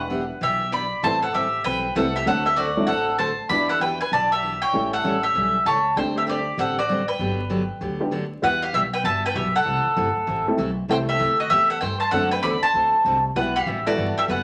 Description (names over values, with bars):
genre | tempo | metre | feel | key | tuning
country, western swing | 195 BPM | 4/4 | swing 63% on 8ths | unclear | A4 = 442 Hz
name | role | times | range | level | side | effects
bowl-back mandolin | melody | 0.0-14.4 s | F#4 to B5 | -23 LUFS | equal | none
honky-tonk upright piano | accompaniment | 0.0-14.3 s | F#3 to A4 | -29 LUFS | equal | none
upright bass | bass | 0.0-14.4 s | E1 to G2 | -33 LUFS | equal | none
picked steel-string acoustic guitar | accompaniment | 0.1-14.4 s | C3 to A4 | -32 LUFS | equal | none
room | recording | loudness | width
wet studio reverb, RT60 0.7 s | vinyl crackle | -22 LUFS | mono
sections
0.0-8.4 A section; 8.4-14.4 B section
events
none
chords
0.0 Em7; 1.0 Am9; 2.3 D7; 3.5 Em9; 4.7 A7; 6.0 D7sus4; 7.2 Gmaj7; 8.4 Emadd9; 9.7 C6; 10.9 Am7/C; 12.1 D7; 13.4 Emadd9